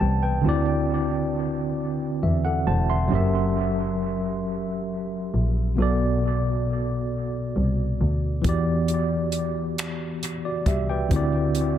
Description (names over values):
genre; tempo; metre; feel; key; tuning
slow six-eight R&B; 45 BPM (dotted quarters); 6/8; straight; E minor; A4 = 440 Hz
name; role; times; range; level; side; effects
mellow tine electric piano; accompaniment; 0.0-11.8 s; B2 to C6; -24 LUFS; equal; overdrive, medium stereo tremolo, dub echo
rich double bass; bass; 0.0-11.8 s; E1 to E2; -25 LUFS; equal; none
compact cocktail drum kit; drums; 8.4-11.8 s; finger snaps, hi-hat, kick drum; -27 LUFS; equal; dub echo
room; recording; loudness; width
light reverb, studio ambience; echo-heavy mix; -22 LUFS; side -10 dB against mid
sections
0.0-11.8 A section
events
none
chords
0.4 D9; 3.1 F#7b9; 5.8 Bm7; 8.4 Em7; 11.1 D9